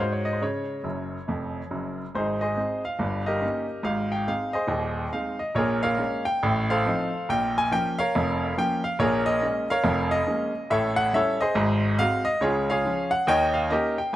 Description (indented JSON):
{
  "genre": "jazz, stride piano",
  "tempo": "140 BPM",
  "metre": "4/4",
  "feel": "swing 63% on 8ths",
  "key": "Ab major",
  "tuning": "A4 = 440 Hz",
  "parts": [
    { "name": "clear baby grand piano", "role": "solo", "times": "0.0-14.2 s", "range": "Eb1 to Ab5", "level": "-23 LUFS", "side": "equal", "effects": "none" }
  ],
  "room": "light reverb, small room ambience",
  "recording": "rough home demo mix",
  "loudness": "-23 LUFS",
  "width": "side -14 dB against mid",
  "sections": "0.0-2.1 A section; 2.1-14.2 B section",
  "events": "grand piano fill 0.9-2.1",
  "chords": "0.0 Ab5; 0.4 Db; 2.1 Ab; 3.0 Eb7/G; 3.9 Ab; 5.6 Bbm7; 6.4 F7/A; 7.3 Bbm; 9.0 Bbm7; 10.7 A7; 11.6 Ab7; 12.4 Db; 13.3 Eb7"
}